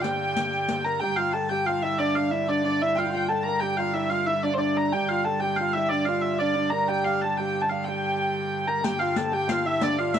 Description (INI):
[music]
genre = medieval dance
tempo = 122 BPM (dotted quarters)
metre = 6/8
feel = straight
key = G dorian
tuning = A4 = 440 Hz
[part]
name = rich hurdy-gurdy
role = melody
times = 0.0-10.2 s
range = C5 to Bb5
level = -26 LUFS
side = right 1 dB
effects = none
[part]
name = hammered dulcimer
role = second line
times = 0.0-10.2 s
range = D5 to Bb5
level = -30 LUFS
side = right 3 dB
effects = none
[part]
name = mellow bass clarinet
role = second line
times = 0.0-10.2 s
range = D4 to Bb4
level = -29 LUFS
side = left 2 dB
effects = none
[part]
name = pipe organ, full organ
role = drone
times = 0.0-10.2 s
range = G2 to D3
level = -32 LUFS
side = right 2 dB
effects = none
[part]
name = riq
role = percussion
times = 0.0-0.8, 8.8-10.2 s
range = none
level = -30 LUFS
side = left 4 dB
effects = none
[sound]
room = light reverb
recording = close, detailed microphones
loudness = -23 LUFS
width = side -8 dB against mid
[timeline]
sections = 0.0-1.0 A section; 1.0-8.8 B section; 8.8-10.2 B section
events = none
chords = none